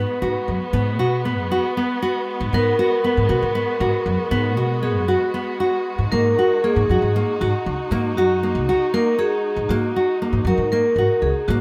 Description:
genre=contemporary instrumental, chamber music in an uneven meter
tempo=234 BPM (eighths)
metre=7/8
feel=straight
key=G# minor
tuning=A4 = 440 Hz
part: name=vibraphone with medium mallets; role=second line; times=0.0-11.6 s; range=F#4 to B4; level=-25 LUFS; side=equal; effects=none
part: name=muted studio string section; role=sustained chords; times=0.0-11.6 s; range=G#3 to F#4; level=-31 LUFS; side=equal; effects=none
part: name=nylon-string guitar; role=arpeggios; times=0.0-11.6 s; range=A#3 to F#4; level=-25 LUFS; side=equal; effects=none
part: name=upright bass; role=bass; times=0.0-11.6 s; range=C#2 to B2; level=-25 LUFS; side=equal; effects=none
room=light reverb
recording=close, detailed microphones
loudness=-20 LUFS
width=mono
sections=0.0-11.6 A section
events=none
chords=0.0 G#m7; 6.1 D#m

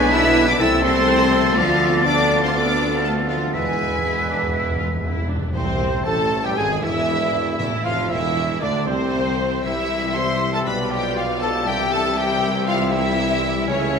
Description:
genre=classical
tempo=119 BPM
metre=4/4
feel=straight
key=A minor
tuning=A4 = 440 Hz
part: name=rich studio violin section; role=melody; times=0.0-14.0 s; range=C5 to E6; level=-26 LUFS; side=left 3 dB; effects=none
part: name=clear symphonic violin section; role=second line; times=0.0-14.0 s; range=C4 to E5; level=-30 LUFS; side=left 2 dB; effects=none
part: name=mellow hollow concert flute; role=second line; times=0.0-14.0 s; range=C5 to B6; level=-26 LUFS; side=left 1 dB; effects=none
part: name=warm clarinet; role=second line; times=0.0-14.0 s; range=B3 to C5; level=-30 LUFS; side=left 2 dB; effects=none
part: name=warm oboe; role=second line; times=0.0-5.3 s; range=A4 to F5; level=-28 LUFS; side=right 1 dB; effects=none
part: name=clear symphonic viola section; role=accompaniment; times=0.0-14.0 s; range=G3 to A4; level=-29 LUFS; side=equal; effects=none
part: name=mellow French horn section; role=sustained chords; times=0.0-14.0 s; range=C3 to G4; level=-28 LUFS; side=left 4 dB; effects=none
part: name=mellow trombone section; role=sustained chords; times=0.0-14.0 s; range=C3 to C4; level=-31 LUFS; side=right 3 dB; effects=none
part: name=concert harp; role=arpeggios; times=0.0-14.0 s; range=G#2 to B5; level=-32 LUFS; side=left 9 dB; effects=none
part: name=warm trumpet section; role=stabs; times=0.0-14.0 s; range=A4 to A5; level=-27 LUFS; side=right 3 dB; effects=none
part: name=mellow tuba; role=bass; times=0.0-14.0 s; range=E1 to D2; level=-27 LUFS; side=right 1 dB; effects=none
part: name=rich symphonic cello section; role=bass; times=0.0-14.0 s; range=C2 to E4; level=-27 LUFS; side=right 2 dB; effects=none
part: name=rich symphonic double bass section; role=bass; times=0.0-14.0 s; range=E1 to E2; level=-30 LUFS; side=right 2 dB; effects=none
part: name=timpani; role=percussion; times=3.5-8.3 s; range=E2 to A2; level=-28 LUFS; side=equal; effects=none
room=wet concert hall reverb, RT60 2.1 s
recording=minimal, uncompressed stereo recording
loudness=-17 LUFS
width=side -6 dB against mid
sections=0.0-5.5 A section; 5.5-14.0 B section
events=timpani fill 3.5-5.5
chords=0.0 G#dim/B; 0.6 Am/C; 1.6 Bm7b5/D; 3.5 E; 5.5 Am/C; 6.6 E7; 7.6 Am/E; 9.6 C; 10.7 G7/B; 11.7 C

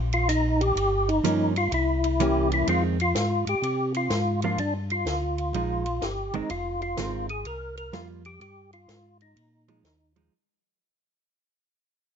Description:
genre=soul jazz organ trio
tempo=126 BPM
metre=4/4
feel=swing 66% on 8ths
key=unclear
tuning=A4 = 440 Hz
part: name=mellow tonewheel organ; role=bass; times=0.0-10.3 s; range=F1 to C3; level=-28 LUFS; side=left 1 dB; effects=slow rotary speaker
part: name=percussive tonewheel organ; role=melody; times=0.1-10.1 s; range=D4 to Bb4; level=-26 LUFS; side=equal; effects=slow rotary speaker, chorus vibrato
part: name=compact cocktail drum kit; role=drums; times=0.1-10.2 s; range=hi-hat, ride cymbal, snare drum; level=-36 LUFS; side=equal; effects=none
part: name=hollow-body jazz guitar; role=accompaniment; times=1.2-10.3 s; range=Eb3 to F4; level=-30 LUFS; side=right 6 dB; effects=none
room=light reverb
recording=nothing above 7.6 kHz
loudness=-23 LUFS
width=side -7 dB against mid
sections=0.0-2.7 A section; 2.7-10.3 B section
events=fade-out 2.7-10.3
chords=0.0 Eb5; 0.8 Gm7b5; 1.7 C7b9; 2.7 Fm7; 3.6 C7sus4; 4.6 G5; 5.5 Bb7sus4; 6.5 Fm7; 7.5 C7sus4; 8.4 Fm9/G; 9.4 Bb7sus4

